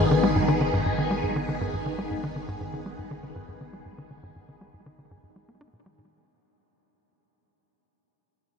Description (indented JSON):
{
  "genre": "ambient, sequencer-driven space music",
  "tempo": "120 BPM",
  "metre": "4/4",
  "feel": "straight",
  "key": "G# minor",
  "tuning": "A4 = 440 Hz",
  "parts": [
    { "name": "phased string machine", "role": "sustained chords", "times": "0.0-6.1 s", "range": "D#3 to G#4", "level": "-27 LUFS", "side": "left 2 dB", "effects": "ensemble chorus, phaser" },
    { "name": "tight sequencer bass", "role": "riff", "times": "0.0-6.1 s", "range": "G#2 to D#4", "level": "-27 LUFS", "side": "equal", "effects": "tape echo" },
    { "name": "warm sub bass", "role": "bass", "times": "0.0-6.1 s", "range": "G#1", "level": "-40 LUFS", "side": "equal", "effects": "none" }
  ],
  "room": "wet huge ambient reverb, RT60 9.2 s",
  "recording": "dark, warm production",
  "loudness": "-24 LUFS",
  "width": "side -6 dB against mid",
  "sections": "0.0-6.1 A section",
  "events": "fade-out on sub bass 0.0-6.1; fade-out 0.0-6.1",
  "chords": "0.0 G#m",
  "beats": "| 0.11 0.61 1.11 1.61 | 2.11 2.61 3.11 3.61 | 4.11 4.61 5.11 5.61"
}